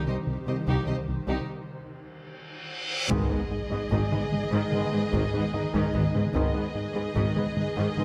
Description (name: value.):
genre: cinematic, hybrid orchestral and electronic film score.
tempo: 74 BPM.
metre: 4/4.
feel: straight.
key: G# minor.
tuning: A4 = 438 Hz.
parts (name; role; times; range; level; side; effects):
rich chamber violin section; second line; 0.0-8.0 s; Eb4 to Eb5; -39 LUFS; equal; none.
rich chamber viola section; accompaniment; 0.0-8.0 s; D#3 to G4; -40 LUFS; equal; none.
clear trombone section; sustained chords; 0.0-8.0 s; Eb3 to G#3; -39 LUFS; equal; none.
granular cloud pad; sustained chords; 0.0-8.0 s; D#3 to B4; -38 LUFS; equal; built-in reverb.
reverse cymbal and impact; sound effects; 2.4-6.3 s; none; -37 LUFS; equal; none.
clear baby grand piano; texture; 0.0-8.0 s; D#4 to D#5; -46 LUFS; equal; none.
thumb-piano-like synth pluck; arpeggios; 0.1-7.9 s; C3 to G#4; -41 LUFS; equal; none.
plucky analog bass; riff; 0.1-8.0 s; C2 to G#3; -34 LUFS; equal; none.
rich symphonic cello section; bass; 0.1-7.8 s; C2 to G#2; -35 LUFS; equal; none.
rich studio double bass section; bass; 0.7-7.2 s; G#1 to C2; -36 LUFS; equal; none.
taiko ensemble; drums; 0.7-8.0 s; none; -36 LUFS; equal; none.
rich chamber violin section; melody; 3.1-8.0 s; D#5; -39 LUFS; equal; none.
dark French horn section; sustained chords; 3.1-8.0 s; B3 to D#4; -41 LUFS; equal; none.
mellow tuba; bass; 3.1-7.2 s; G#1; -40 LUFS; equal; none.
room: moderate concert hall reverb, RT60 2.4 s.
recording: close, detailed microphones.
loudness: -27 LUFS.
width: mono.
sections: 0.0-3.1 A section; 3.1-8.0 A section.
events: break 1.5-3.1; drum fill 2.3-3.1; reverse cymbal 2.4-3.1; impact 3.1-6.3.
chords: 0.0 Cm; 3.1 G#m.